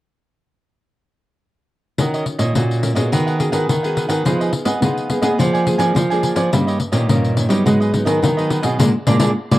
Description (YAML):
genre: samba and choro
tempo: 106 BPM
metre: 4/4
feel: straight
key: Eb minor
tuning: A4 = 441 Hz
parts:
  - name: cavaquinho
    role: accompaniment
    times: 2.0-9.6 s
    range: D4 to Ab5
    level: -24 LUFS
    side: right 4 dB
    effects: cassette tape
  - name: nylon-string guitar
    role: accompaniment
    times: 2.0-9.6 s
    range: G2 to Bb4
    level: -22 LUFS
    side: left 1 dB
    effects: cassette tape
  - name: nylon-string guitar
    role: bass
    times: 2.0-9.6 s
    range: Bb2 to Cb4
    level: -18 LUFS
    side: right 1 dB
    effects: none
  - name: pandeiro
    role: percussion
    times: 2.0-9.6 s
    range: none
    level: -21 LUFS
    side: left 3 dB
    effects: none
room: light reverb, small room ambience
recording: home recording on cassette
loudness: -15 LUFS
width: side -16 dB against mid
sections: 2.0-9.6 A section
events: band accent 8.8-9.6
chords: 2.0 Ebm7; 3.1 Abm7/Eb; 4.3 Fm7b5; 5.4 Bb7/F; 6.5 Eb7/G; 7.7 Abm7; 8.8 Bb7